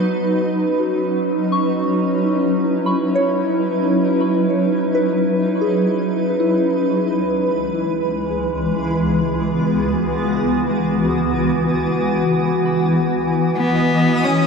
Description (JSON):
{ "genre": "ambient", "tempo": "free time", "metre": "none", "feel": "none", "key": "C# minor", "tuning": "A4 = 440 Hz", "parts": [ { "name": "granular cloud pad", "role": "sustained chords", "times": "0.0-14.5 s", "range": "C#2 to B4", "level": "-17 LUFS", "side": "equal", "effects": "built-in reverb" }, { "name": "soft synth bell", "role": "arpeggios", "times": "0.0-14.5 s", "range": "E4 to D#6", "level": "-25 LUFS", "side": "left 1 dB", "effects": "chorus, phaser, tape echo" }, { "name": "rich cello", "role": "melody", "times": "13.6-14.5 s", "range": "B3 to C#4", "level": "-22 LUFS", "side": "equal", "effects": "none" }, { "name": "twinkling granular texture", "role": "texture", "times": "13.7-14.5 s", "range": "D#5 to D#6", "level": "-25 LUFS", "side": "left 2 dB", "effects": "built-in reverb" } ], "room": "wet huge ambient reverb, RT60 8.2 s", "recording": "none", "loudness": "-16 LUFS", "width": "side -5 dB against mid", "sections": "0.0-13.6 A section", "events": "fade-out on synth bell 0.0-13.6; filter sweep on ambient pad 0.0-13.6", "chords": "0.0 C#m11; 6.4 Eadd9/C#; 13.6 C#m9" }